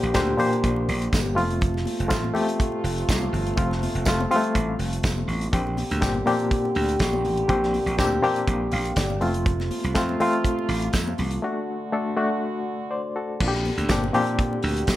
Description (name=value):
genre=disco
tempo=122 BPM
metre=4/4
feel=straight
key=unclear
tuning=A4 = 439 Hz
part: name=barky reed electric piano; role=accompaniment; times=0.0-15.0 s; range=Bb2 to F5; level=-25 LUFS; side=left 2 dB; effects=fast tremolo
part: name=warm French horn section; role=sustained chords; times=0.0-15.0 s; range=C3 to G4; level=-30 LUFS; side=right 1 dB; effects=none
part: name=slap bass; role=bass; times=0.0-15.0 s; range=F1 to F2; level=-26 LUFS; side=right 1 dB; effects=none
part: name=warm soul drum kit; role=drums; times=0.0-15.0 s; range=crash cymbal, hi-hat, kick drum, snare drum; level=-27 LUFS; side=right 1 dB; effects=none
part: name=tambourine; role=percussion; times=0.1-15.0 s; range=none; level=-38 LUFS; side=right 7 dB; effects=none
part: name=congas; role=percussion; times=0.3-15.0 s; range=none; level=-35 LUFS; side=left 3 dB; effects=none
room=light reverb, small room reverb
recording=none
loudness=-21 LUFS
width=side -14 dB against mid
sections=0.0-13.4 A section; 13.4-15.0 A section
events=reed electric piano fill 8.5-9.5, 12.7-13.4; break 11.4-13.4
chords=0.0 Bb6; 1.4 F; 5.5 Bb6; 9.2 F; 11.4 D; 13.4 Bb6